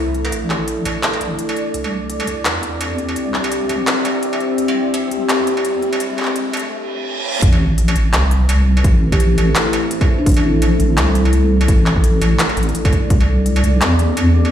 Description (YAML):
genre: half-time drum and bass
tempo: 169 BPM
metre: 4/4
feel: swing 57% on 16ths, half-time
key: A minor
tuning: A4 = 441 Hz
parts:
  - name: deep dark ambient pad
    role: sustained chords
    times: 0.0-14.5 s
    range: A3 to E5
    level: -21 LUFS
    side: left 1 dB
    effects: chorus, built-in reverb, sidechain pumping
  - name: deep soft wobble bass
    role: bass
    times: 0.0-14.5 s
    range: A1 to E2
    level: -16 LUFS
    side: equal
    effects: chorus, tube saturation
  - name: industrial drum kit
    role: drums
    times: 0.1-14.5 s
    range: handclaps, hi-hat, struck metal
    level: -21 LUFS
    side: equal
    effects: overdrive
  - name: riser, reverse cymbal and sub drop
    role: sound effects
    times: 3.8-8.8 s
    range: none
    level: -26 LUFS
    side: right 1 dB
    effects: none
  - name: electronic kick drum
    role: drums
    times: 7.4-13.2 s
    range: none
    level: -14 LUFS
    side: equal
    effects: none
  - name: marimba with soft mallets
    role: melody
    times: 9.1-10.4 s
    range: D4 to G4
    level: -22 LUFS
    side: equal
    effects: digital delay
room: moderate echo chamber reverb, RT60 1.9 s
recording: played on a big sound system in a bare room, stone room reverb, high-pass filter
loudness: -14 LUFS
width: side -10 dB against mid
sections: 0.0-7.4 A section; 7.4-14.5 B section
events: build-up 0.0-7.4; riser 3.8-6.7; reverse cymbal 6.7-7.4; drop 7.4-14.5; impact 7.4-8.8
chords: 0.0 Am; 1.7 C; 7.4 Am; 13.1 C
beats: | 0.32 0.68 1.03 1.39 | 1.74 2.10 2.45 2.81 | 3.16 3.52 3.87 4.23 | 4.58 4.94 5.29 5.65 | 6.00 6.36 6.71 7.07 | 7.42 7.78 8.13 8.49 | 8.84 9.20 9.55 9.91 | 10.26 10.62 10.97 11.33 | 11.68 12.04 12.39 12.75 | 13.10 13.46 13.81 14.17